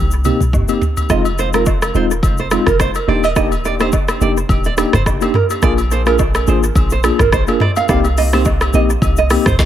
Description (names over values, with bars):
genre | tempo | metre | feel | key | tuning
afrobeats | 106 BPM | 4/4 | swing 55% on 16ths | F dorian | A4 = 440 Hz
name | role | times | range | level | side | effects
warm 808-style bass | bass | 0.0-9.7 s | Eb1 to C2 | -18 LUFS | equal | none
afro-pop drum kit | drums | 0.1-9.7 s | hi-hat, kick drum, rim click, shaker, snare drum, toms | -17 LUFS | equal | dub echo
tine electric piano | accompaniment | 0.2-9.5 s | Ab3 to Ab4 | -19 LUFS | left 1 dB | medium stereo tremolo, dub echo
agogo bells and woodblock | percussion | 0.3-9.7 s | none | -25 LUFS | left 3 dB | none
nylon-string guitar | riff | 1.1-9.5 s | Bb4 to F5 | -20 LUFS | right 7 dB | dub echo
room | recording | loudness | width
light reverb | echo-heavy mix | -12 LUFS | side -11 dB against mid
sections
0.0-1.1 A section; 1.1-9.7 B section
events
drum fill 0.0-1.1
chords
0.0 Cm7; 1.1 Fm7; 3.1 Ebmaj7; 5.6 Bb7; 7.9 Cm7